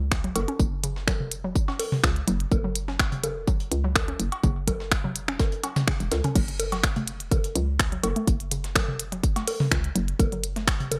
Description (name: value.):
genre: minimal techno.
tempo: 125 BPM.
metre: 4/4.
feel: straight.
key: unclear.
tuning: A4 = 440 Hz.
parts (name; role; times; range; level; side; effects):
hollow knocking FM bass; bass; 0.0-11.0 s; E1 to C#2; -32 LUFS; equal; sidechain pumping.
breakbeat sampler-style drum kit; drums; 0.1-11.0 s; hi-hat, snare drum, tambourine; -40 LUFS; equal; overdrive, high-pass filter on perc, high-pass filter on snare, high-pass filter on hats, high-pass filter on room.
electronic kick drum; drums; 0.1-10.8 s; none; -27 LUFS; equal; none.
minimal click drum kit; drums; 0.1-11.0 s; crash cymbal, finger snaps, hi-hat; -30 LUFS; equal; overdrive.
hollow square pluck; riff; 0.2-11.0 s; C#3 to C#4; -36 LUFS; equal; chorus, sidechain pumping, delay.
electronic cowbell, bongos and toms; percussion; 0.4-11.0 s; none; -32 LUFS; equal; none.
room: light reverb, digital ambience.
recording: bright 1980s-style digital production.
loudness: -26 LUFS.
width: mono.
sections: 0.0-11.0 A section.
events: none.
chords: 0.0 F#5.